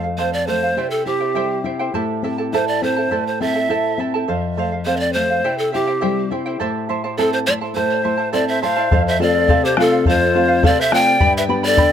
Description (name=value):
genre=andean folk, Andean ensemble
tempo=104 BPM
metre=2/4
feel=straight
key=unclear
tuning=A4 = 440 Hz
part: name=charango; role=accompaniment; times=0.0-11.9 s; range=E4 to B5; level=-22 LUFS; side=right 5 dB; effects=none
part: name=nylon-string guitar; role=accompaniment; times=0.0-11.9 s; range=F2 to G4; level=-23 LUFS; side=left 4 dB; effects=none
part: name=breathy bright pan flute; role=melody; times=0.2-11.9 s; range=G4 to G5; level=-19 LUFS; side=equal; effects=tape echo
part: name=large quena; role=second line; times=8.3-11.9 s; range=F4 to D5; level=-22 LUFS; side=left 8 dB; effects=none
part: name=bombo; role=percussion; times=8.9-11.9 s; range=none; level=-18 LUFS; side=left 1 dB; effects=none
room=light reverb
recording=close, detailed microphones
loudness=-16 LUFS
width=side -9 dB against mid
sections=0.0-8.9 A section; 8.9-11.9 B section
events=none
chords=0.0 F; 0.8 C; 1.9 Am; 4.3 F; 5.4 C; 6.6 Am; 8.9 F; 11.2 G